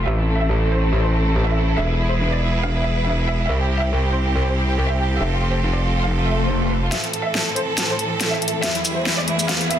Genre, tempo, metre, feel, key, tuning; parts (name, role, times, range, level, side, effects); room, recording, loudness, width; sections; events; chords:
heavy wobble dubstep; 140 BPM; 4/4; swing 55% on 16ths, half-time; A minor; A4 = 442 Hz
warm studio violin section; melody; 0.0-9.8 s; E4 to F5; -24 LUFS; right 1 dB; tape echo
bright studio string section; sustained chords; 0.0-9.8 s; E2 to B4; -25 LUFS; right 1 dB
metallic wobble bass; bass; 0.0-6.9 s; E1 to C2; -19 LUFS; equal; chorus, overdrive
swell and riser; sound effects; 6.2-9.8 s; -30 LUFS; left 3 dB
dubstep drum kit; drums; 6.9-9.8 s; hi-hat, shaker, snare drum; -22 LUFS; equal; overdrive, high-pass filter on snare, studio reverb, high-pass filter on hats, high-pass filter on perc
light reverb; dense, heavily limited modern master, low-pass filter; -18 LUFS; side -10 dB against mid
0.0-6.9 A section; 6.9-9.8 B section
swell 6.2-6.9; build-up 6.9-9.8; drum fill 6.9-9.8; riser 7.0-9.8
0.1 Am; 1.8 E; 3.5 C; 5.2 Fadd9; 6.9 Am; 8.6 E